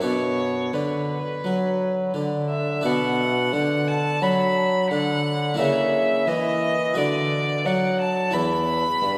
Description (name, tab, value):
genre	classical, baroque-style sonata movement with continuo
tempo	87 BPM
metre	4/4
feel	straight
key	B minor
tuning	A4 = 440 Hz
part	rich violin	melody	0.0-9.2 s	B4 to B5	-28 LUFS	equal	none
part	harpsichord	accompaniment	0.0-9.2 s	E2 to B4	-28 LUFS	equal	none
part	warm bassoon	bass	0.0-9.2 s	E2 to F#3	-27 LUFS	equal	none
room	wet church reverb, RT60 3.4 s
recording	recorded in a church or concert hall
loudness	-23 LUFS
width	mono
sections	0.0-2.8 A section; 2.8-9.2 B section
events	none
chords	0.0 Bm; 5.6 A#dim/C#; 7.0 Bm/D; 8.3 Em